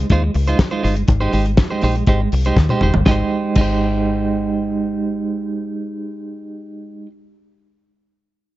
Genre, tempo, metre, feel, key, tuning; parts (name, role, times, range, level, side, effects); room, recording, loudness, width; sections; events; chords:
disco; 121 BPM; 4/4; straight; Ab major; A4 = 436 Hz
clean electric guitar; accompaniment; 0.0-7.1 s; Ab3 to C5; -20 LUFS; right 3 dB; tremolo
deep dub fingered electric bass; bass; 0.0-6.6 s; F1 to Eb2; -19 LUFS; left 1 dB
warm soul drum kit; drums; 0.1-3.7 s; crash cymbal, hi-hat, kick drum, snare drum, toms; -18 LUFS; left 1 dB
studio ambience; dark, warm production, nothing above 7.7 kHz; -15 LUFS; side -16 dB against mid
0.0-3.1 A section; 3.1-7.0 B section
drum fill 2.6-3.1
0.0 Dbmaj9; 1.1 Abmaj7